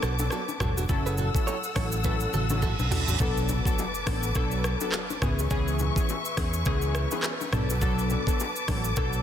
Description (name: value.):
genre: afrobeats.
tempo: 104 BPM.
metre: 4/4.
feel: swing 58% on 16ths.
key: B dorian.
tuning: A4 = 440 Hz.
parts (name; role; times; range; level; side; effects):
warm analog keys; accompaniment; 0.0-9.2 s; E3 to A4; -32 LUFS; left 2 dB; chorus.
warm studio string section; sustained chords; 0.0-9.2 s; A4 to E6; -34 LUFS; left 2 dB; none.
direct-recorded clean electric guitar; riff; 0.0-3.2 s; D4 to C#5; -36 LUFS; right 8 dB; tape echo.
fingered electric bass; bass; 0.0-9.2 s; E1 to E2; -28 LUFS; equal; none.
afro-pop drum kit; drums; 0.0-9.2 s; handclaps, hi-hat, kick drum, rim click, shaker, toms; -29 LUFS; equal; soft clipping on snare.
bongos and congas; percussion; 0.2-9.1 s; none; -38 LUFS; left 6 dB; none.
reverse cymbal and impact; sound effects; 2.5-5.5 s; none; -36 LUFS; right 2 dB; none.
room: light reverb, digital ambience.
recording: dense, heavily limited modern master.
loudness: -24 LUFS.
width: side -10 dB against mid.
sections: 0.0-3.2 A section; 3.2-9.2 B section.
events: drum fill 2.0-3.2; reverse cymbal 2.5-3.2; impact 3.2-5.5.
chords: 0.0 Bm7; 0.9 F#m7; 3.2 Bm7; 5.2 C#m7; 7.5 Bm7.